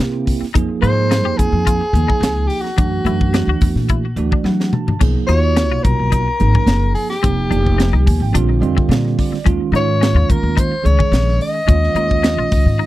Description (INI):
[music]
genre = electric jazz fusion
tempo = 108 BPM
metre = 4/4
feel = swing 53% on 16ths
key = unclear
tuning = A4 = 445 Hz
[part]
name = bell-like tine electric piano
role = accompaniment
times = 0.0-12.9 s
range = D3 to A5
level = -21 LUFS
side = right 6 dB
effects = medium stereo tremolo, analog chorus
[part]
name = upright bass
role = bass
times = 0.0-12.8 s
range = F1 to Gb3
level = -16 LUFS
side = equal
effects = none
[part]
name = crisp fusion drum kit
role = drums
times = 0.0-12.7 s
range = crash cymbal, hi-hat, kick drum, snare drum, toms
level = -18 LUFS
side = equal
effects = none
[part]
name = clean electric guitar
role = stabs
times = 0.5-12.9 s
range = C4 to G4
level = -28 LUFS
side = left 14 dB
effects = analog chorus, tape echo
[part]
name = growling soprano saxophone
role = melody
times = 0.8-12.9 s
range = Gb4 to Eb5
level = -20 LUFS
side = left 2 dB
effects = none
[sound]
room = little or no reverb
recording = dry, close 1970s-style studio recording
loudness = -13 LUFS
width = side -16 dB against mid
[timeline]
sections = 0.0-12.9 A section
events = tine electric piano fill 3.9-5.0, 7.8-9.5; drum fill 4.4-5.0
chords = 0.0 C7; 0.5 Fm11; 2.8 Gb7alt; 5.0 B6; 7.2 Fm11; 8.3 Bbadd9; 9.5 Eb7sus4